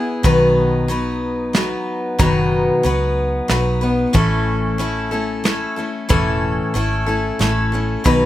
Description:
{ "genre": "honky-tonk and classic country", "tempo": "92 BPM", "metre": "3/4", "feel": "straight", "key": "unclear", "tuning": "A4 = 440 Hz", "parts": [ { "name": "picked steel-string acoustic guitar", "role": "accompaniment", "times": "0.0-8.3 s", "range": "A2 to B4", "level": "-17 LUFS", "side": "left 2 dB", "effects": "none" }, { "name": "vintage muted fingered electric bass", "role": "bass", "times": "0.2-8.3 s", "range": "E1 to C#2", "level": "-22 LUFS", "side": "right 1 dB", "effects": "none" }, { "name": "soft brush drum kit", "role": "drums", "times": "0.2-8.2 s", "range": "hi-hat, kick drum, snare drum", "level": "-18 LUFS", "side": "right 1 dB", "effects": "none" } ], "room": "light reverb", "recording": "none", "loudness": "-16 LUFS", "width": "side -14 dB against mid", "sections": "0.0-8.3 A section", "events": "none", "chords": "0.2 B; 4.1 A" }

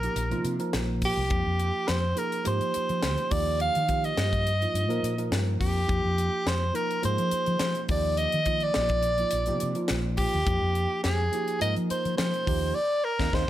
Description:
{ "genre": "electric jazz fusion", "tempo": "105 BPM", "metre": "4/4", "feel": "straight", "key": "F dorian", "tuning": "A4 = 440 Hz", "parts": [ { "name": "breathy soprano saxophone", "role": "melody", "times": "0.0-13.5 s", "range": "G4 to F5", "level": "-28 LUFS", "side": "equal", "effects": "none" }, { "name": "tine electric piano", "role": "accompaniment", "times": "0.0-13.4 s", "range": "F3 to Bb4", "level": "-33 LUFS", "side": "right 3 dB", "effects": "overdrive, phaser" }, { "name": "fretless electric bass", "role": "bass", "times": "0.0-13.4 s", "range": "Bb1 to F3", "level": "-29 LUFS", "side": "left 1 dB", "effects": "analog chorus" }, { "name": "crisp fusion drum kit", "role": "drums", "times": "0.0-13.5 s", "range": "hi-hat, kick drum, snare drum", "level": "-32 LUFS", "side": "left 1 dB", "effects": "none" } ], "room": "light reverb", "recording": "none", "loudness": "-24 LUFS", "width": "side -13 dB against mid", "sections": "0.0-13.5 A section", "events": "band accent 12.8-13.5", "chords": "0.0 Ebadd9; 1.3 Fm9; 3.3 Ebadd9; 5.9 Fm9; 7.9 Ebmaj9; 10.5 Fm9; 12.5 Cm7/Eb" }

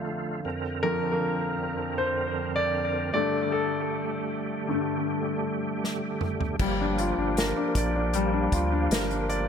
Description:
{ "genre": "pop ballad", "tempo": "78 BPM", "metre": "4/4", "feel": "straight", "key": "unclear", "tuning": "A4 = 439 Hz", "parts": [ { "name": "clear concert grand piano", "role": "accompaniment", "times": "0.0-9.5 s", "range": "F2 to D5", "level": "-27 LUFS", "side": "left 2 dB", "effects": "analog delay" }, { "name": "bright tonewheel organ", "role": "sustained chords", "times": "0.0-9.5 s", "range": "F2 to Bb4", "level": "-32 LUFS", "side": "right 3 dB", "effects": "chorus vibrato, fast rotary speaker" }, { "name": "unplugged drum kit", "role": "drums", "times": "5.8-9.5 s", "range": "crash cymbal, hi-hat, kick drum, snare drum, toms", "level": "-30 LUFS", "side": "equal", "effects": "none" }, { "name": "warm sub bass", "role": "bass", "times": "6.6-9.5 s", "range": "G1 to D2", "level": "-30 LUFS", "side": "equal", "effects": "none" } ], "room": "light reverb, studio ambience", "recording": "echo-heavy mix", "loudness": "-25 LUFS", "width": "side -7 dB against mid", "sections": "0.0-6.6 A section; 6.6-9.5 B section", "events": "grand piano solo 0.0-6.6; drum fill 5.8-6.6", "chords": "0.4 Bbadd9/F; 3.1 Gsus2; 6.6 Gm7" }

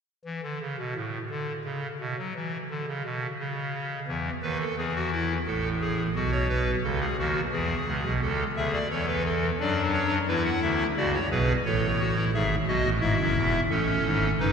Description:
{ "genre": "classical, baroque-style 3-part fugue for pipe organ", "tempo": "87 BPM", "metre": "3/4", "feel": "straight", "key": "A major", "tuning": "A4 = 442 Hz", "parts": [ { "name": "pipe organ, clarinet reed", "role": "solo", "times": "0.2-14.5 s", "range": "E1 to F#5", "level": "-25 LUFS", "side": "equal", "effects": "none" } ], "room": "wet cathedral reverb, RT60 4.4 s", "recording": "heard from further back in the room", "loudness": "-25 LUFS", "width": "side -6 dB against mid", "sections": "0.0-14.5 A section", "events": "none", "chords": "0.0 N.C.; 6.2 B; 7.5 E; 8.2 A/C#; 9.6 D/F#; 10.3 E7; 11.7 A; 12.3 E/G#; 13.7 A" }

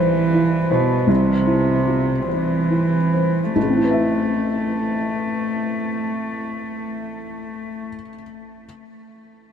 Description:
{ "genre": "neoclassical piano and strings", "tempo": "46-56 BPM (dotted quarters)", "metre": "6/8", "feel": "rubato", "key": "A minor", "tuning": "A4 = 442 Hz", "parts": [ { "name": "warm cello", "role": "second line", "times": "0.0-7.9 s", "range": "B2 to A3", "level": "-21 LUFS", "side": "right 1 dB", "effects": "none" }, { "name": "dark upright piano", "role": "accompaniment", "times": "0.0-8.7 s", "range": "A1 to E5", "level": "-21 LUFS", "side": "left 1 dB", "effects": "none" } ], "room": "wet huge ambient reverb, RT60 7.1 s", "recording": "heard from further back in the room", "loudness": "-17 LUFS", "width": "side -8 dB against mid", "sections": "0.0-3.6 A section; 3.6-8.6 B section", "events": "slowing down 0.0-3.6", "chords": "0.0 C; 3.6 Amadd9" }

